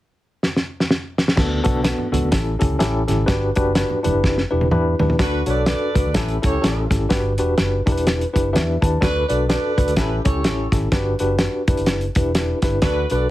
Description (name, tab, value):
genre	uptempo 1960s-style soul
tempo	126 BPM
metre	4/4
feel	swing 59% on 8ths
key	D major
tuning	A4 = 441 Hz
part	warm soul drum kit	drums	0.4-13.2 s	crash cymbal, hi-hat, kick drum, snare drum, toms	-20 LUFS	equal	none
part	tine electric piano	accompaniment	1.4-13.3 s	B3 to A5	-22 LUFS	left 1 dB	fast tremolo
part	vintage muted fingered electric bass	bass	1.4-13.3 s	E1 to E2	-22 LUFS	equal	none
part	congas	percussion	1.4-5.1 s	none	-30 LUFS	right 4 dB	none
part	warm horn section	second line	5.2-13.3 s	D4 to D5	-25 LUFS	right 2 dB	none
room	light reverb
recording	heavily compressed radio sound, multiband compression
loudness	-17 LUFS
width	side -15 dB against mid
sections	0.0-1.4 A section; 1.4-5.2 B section; 5.2-13.3 C section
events	drum fill 0.4-1.4, 4.2-5.2; tine electric piano fill 8.3-9.0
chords	0.0 N.C.; 1.4 D6; 2.3 A7; 3.3 Gmaj7; 4.0 Em7; 5.2 D6; 6.2 A7; 7.1 Gmaj7; 7.8 Em7; 9.0 D6; 10.0 A7; 10.9 Gmaj7; 11.6 Em7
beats	0.43 0.90 | 1.38 1.86 2.34 2.81 | 3.29 3.77 4.24 4.72 | 5.20 5.68 6.15 6.63 | 7.11 7.58 8.06 8.54 | 9.02 9.49 9.97 10.45 | 10.92 11.40 11.88 12.35 | 12.83